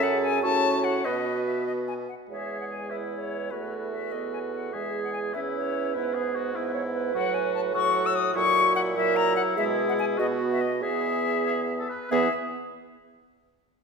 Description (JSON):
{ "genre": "quick classical-period movement for wind quintet", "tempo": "98 BPM (dotted quarters)", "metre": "6/8", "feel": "straight", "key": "E major", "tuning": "A4 = 440 Hz", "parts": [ { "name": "bright concert flute", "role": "melody", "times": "0.0-12.3 s", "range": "B4 to E6", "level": "-28 LUFS", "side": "left 7 dB", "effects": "none" }, { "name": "warm oboe", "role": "second line", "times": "0.0-12.3 s", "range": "E4 to C#5", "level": "-33 LUFS", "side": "left 3 dB", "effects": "none" }, { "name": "mellow clarinet", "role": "accompaniment", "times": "0.0-12.3 s", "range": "B3 to C#5", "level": "-30 LUFS", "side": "right 8 dB", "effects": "none" }, { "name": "warm French horn", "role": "accompaniment", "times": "0.0-12.3 s", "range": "E3 to C#4", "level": "-34 LUFS", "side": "left 1 dB", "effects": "none" }, { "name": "clear bassoon", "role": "bass", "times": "0.0-12.3 s", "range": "E2 to B2", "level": "-32 LUFS", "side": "right 2 dB", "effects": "none" } ], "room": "wet concert hall reverb, RT60 1.8 s", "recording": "none", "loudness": "-24 LUFS", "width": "side -5 dB against mid", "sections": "0.0-2.3 A section; 2.3-12.1 B section; 12.1-13.4 C section", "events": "none", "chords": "0.4 F#m/A; 1.0 B; 2.3 E; 3.5 B5/E; 4.7 E; 6.0 E/G#; 7.2 F#m/A; 8.4 F#7/A#; 9.6 E/B; 10.2 B; 10.8 E; 12.1 E5", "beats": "0.43 | 1.05 1.67 | 2.30 2.92 | 3.52 4.13 | 4.74 5.34 | 5.95 6.55 | 7.15 7.75 | 8.36 8.97 | 9.58 10.19 | 10.83 11.47 | 12.11" }